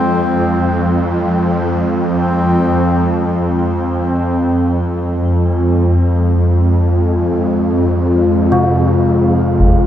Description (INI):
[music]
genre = dark ambient drone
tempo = 56 BPM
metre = 4/4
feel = straight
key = unclear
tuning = A4 = 440 Hz
[part]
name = clear duduk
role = melody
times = 0.0-3.2 s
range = C4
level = -22 LUFS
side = left 1 dB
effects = shimmer reverb, tape echo
[part]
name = deep dark ambient pad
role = sustained chords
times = 0.0-9.9 s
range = F2 to F5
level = -16 LUFS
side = left 1 dB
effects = chorus, built-in reverb, shimmer reverb
[part]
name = swarming drone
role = drone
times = 0.0-9.9 s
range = F2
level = -16 LUFS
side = equal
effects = built-in reverb
[part]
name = bronze singing bowl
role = texture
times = 0.0-9.9 s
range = C4 to C5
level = -27 LUFS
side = right 2 dB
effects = none
[part]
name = gamelan-type bronze metallophone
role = arpeggios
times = 8.5-9.9 s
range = C3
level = -16 LUFS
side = left 1 dB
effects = none
[part]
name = concert bass drum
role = percussion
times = 9.6-9.8 s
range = none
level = -11 LUFS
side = equal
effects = low-pass filter on kick
[sound]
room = wet cathedral reverb, RT60 5.7 s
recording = in a vast, echoing space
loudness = -12 LUFS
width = side -10 dB against mid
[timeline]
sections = 0.0-9.9 A section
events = none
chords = 0.0 Fm